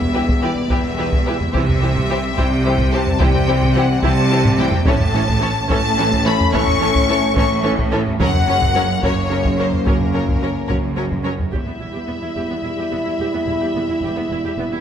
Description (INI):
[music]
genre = cinematic, epic orchestral film score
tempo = 72 BPM (dotted quarters)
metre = 6/8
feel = straight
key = E minor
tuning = A4 = 440 Hz
[part]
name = clear symphonic violin section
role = melody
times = 0.0-14.8 s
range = A#4 to C#6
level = -23 LUFS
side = left 4 dB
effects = none
[part]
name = mellow French horn section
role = sustained chords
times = 0.0-14.8 s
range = G3 to E4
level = -23 LUFS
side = left 3 dB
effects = none
[part]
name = clear symphonic cello section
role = bass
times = 0.0-14.8 s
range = E2 to C3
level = -23 LUFS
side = right 3 dB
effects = none
[part]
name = clear symphonic double bass section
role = bass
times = 0.0-14.6 s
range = E1 to C2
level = -24 LUFS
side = right 3 dB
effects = none
[part]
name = taiko ensemble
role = drums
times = 0.0-12.6 s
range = none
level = -21 LUFS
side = equal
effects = none
[part]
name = warm symphonic violin section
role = second line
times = 0.1-14.8 s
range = G4 to E5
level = -26 LUFS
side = left 3 dB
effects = none
[part]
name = clear symphonic viola section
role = accompaniment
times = 0.1-14.8 s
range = E3 to G4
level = -26 LUFS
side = right 2 dB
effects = none
[sound]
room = wet scoring stage reverb, RT60 1.6 s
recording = none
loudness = -15 LUFS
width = side -8 dB against mid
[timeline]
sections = 0.0-11.5 A section; 11.5-14.8 B section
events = drum fill 4.5-4.9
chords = 0.0 Em; 1.5 C; 4.9 A; 8.2 F#; 11.5 Em